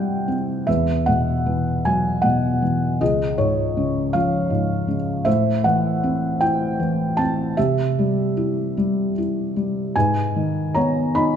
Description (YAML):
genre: classical, lyrical solo piano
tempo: 51 BPM (dotted quarters)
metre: 6/8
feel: rubato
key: unclear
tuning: A4 = 440 Hz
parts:
  - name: felt-muted upright piano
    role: solo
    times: 0.0-11.4 s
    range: C#2 to B5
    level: -18 LUFS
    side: equal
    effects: none
room: moderate recital hall reverb, RT60 1.8 s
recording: minimal, uncompressed stereo recording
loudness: -18 LUFS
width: side -8 dB against mid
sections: 0.0-10.0 A section; 10.0-11.4 B section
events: none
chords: 0.0 C; 0.7 Esus2; 3.0 C#; 5.3 Am; 7.6 C; 10.0 G#m